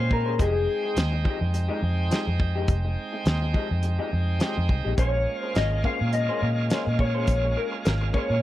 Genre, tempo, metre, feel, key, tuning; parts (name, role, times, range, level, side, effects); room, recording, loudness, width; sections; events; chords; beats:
straight-eighth soul blues; 105 BPM; 4/4; swing 55% on 16ths; F minor; A4 = 440 Hz
electric guitar through a small old amp; melody; 0.0-0.9, 5.0-8.4 s; Ab4 to F5; -27 LUFS; left 3 dB; lush chorus
bright tonewheel organ; accompaniment; 0.0-8.4 s; Ab3 to G5; -32 LUFS; right 4 dB; slow rotary speaker, overdrive
electric guitar through a small old amp; stabs; 0.0-8.3 s; F3 to C5; -33 LUFS; left 4 dB; wide subtle chorus
vintage muted fingered electric bass; bass; 0.0-8.4 s; F1 to Bb2; -25 LUFS; equal
warm soul drum kit; drums; 0.1-8.3 s; hi-hat, kick drum, snare drum; -25 LUFS; equal
small room ambience; dry, close 1970s-style studio recording; -22 LUFS; side -14 dB against mid
0.0-8.4 A section
0.4 Fm9; 5.0 Bbm9
| 0.40 0.97 1.54 2.11 | 2.69 3.26 3.83 4.41 | 4.98 5.56 6.13 6.70 | 7.28 7.85